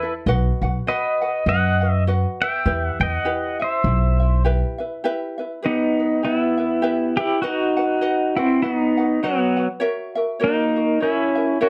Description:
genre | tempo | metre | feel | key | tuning
Hawaiian | 101 BPM | 4/4 | swing 58% on 8ths | E harmonic minor | A4 = 441 Hz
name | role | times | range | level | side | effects
pedal steel guitar | melody | 0.0-11.7 s | F#3 to G5 | -22 LUFS | equal | none
ukulele | accompaniment | 0.0-11.7 s | E4 to F#5 | -28 LUFS | equal | none
upright bass | bass | 0.3-4.6 s | B1 to F#2 | -22 LUFS | equal | none
room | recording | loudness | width
moderate studio reverb, RT60 0.6 s | dark, warm production | -21 LUFS | mono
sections
0.0-5.0 A section; 5.0-11.7 A section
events
none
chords
0.3 B; 2.7 Em; 7.4 B; 9.8 F#7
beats
| 0.27 0.87 1.46 2.06 | 2.66 3.25 3.85 4.45 | 5.04 5.64 6.23 6.83 | 7.43 8.02 8.62 9.21 | 9.81 10.41 11.00 11.60

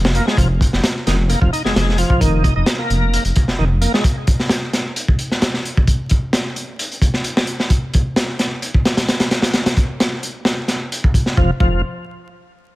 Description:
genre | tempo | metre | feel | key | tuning
breakbeat, breaks | 131 BPM | 4/4 | straight | F minor | A4 = 440 Hz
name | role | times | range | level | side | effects
dark detuned saw bass | bass | 0.0-3.9, 11.4-11.8 s | F1 | -17 LUFS | equal | none
crunchy breakbeat drum kit | drums | 0.0-11.7 s | hi-hat, kick drum, snare drum | -16 LUFS | equal | none
bright tonewheel organ | riff | 0.1-4.0, 11.4-11.8 s | Eb3 to Eb4 | -21 LUFS | equal | overdrive, chorus vibrato, slow rotary speaker, dub echo
room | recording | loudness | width
little or no reverb | vinyl crackle | -15 LUFS | side -18 dB against mid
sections
0.0-11.4 A section; 11.4-12.8 B section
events
none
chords
0.0 Fm7; 4.0 N.C.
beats
| 0.38 0.84 1.30 1.76 | 2.21 2.67 3.13 3.59 | 4.05 4.50 4.96 5.42 | 5.88 6.34 6.79 7.25 | 7.71 8.17 8.63 9.08 | 9.54 10.00 10.46 10.92 | 11.37

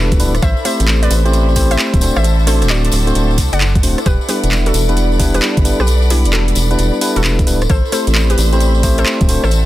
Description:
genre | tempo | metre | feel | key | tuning
UK garage, two-step garage | 132 BPM | 4/4 | swing 65% on 16ths | unclear | A4 = 444 Hz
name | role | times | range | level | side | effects
hollow square pluck | melody | 0.0-9.6 s | E4 to F#5 | -23 LUFS | left 2 dB | chorus, digital delay
clear studio violin section | sustained chords | 0.0-9.7 s | C5 to B5 | -27 LUFS | equal | sidechain pumping
tine electric piano | stabs | 0.0-9.4 s | G3 to C5 | -19 LUFS | left 1 dB | digital delay
rubbery square bass | bass | 0.0-9.7 s | D1 to C2 | -14 LUFS | equal | sidechain pumping
warbly tape-like pad | texture | 0.0-9.7 s | E4 to G5 | -25 LUFS | left 1 dB | chorus, built-in reverb, phaser, sidechain pumping
electronic kick drum | drums | 0.1-9.3 s | none | -15 LUFS | equal | overdrive
garage drum kit | drums | 0.1-9.6 s | handclaps, hi-hat, rim click | -20 LUFS | right 2 dB | overdrive
tambourine | percussion | 0.1-9.6 s | none | -26 LUFS | left 6 dB | none
room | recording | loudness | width
light reverb | dense, heavily limited modern master | -11 LUFS | side -15 dB against mid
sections
0.0-9.7 A section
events
none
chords
0.4 Am7; 2.0 D7; 4.1 Em7; 7.7 Am7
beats
| 0.42 0.88 1.33 1.79 | 2.24 2.70 3.15 3.61 | 4.06 4.51 4.97 5.42 | 5.88 6.33 6.79 7.24 | 7.70 8.15 8.61 9.06 | 9.52

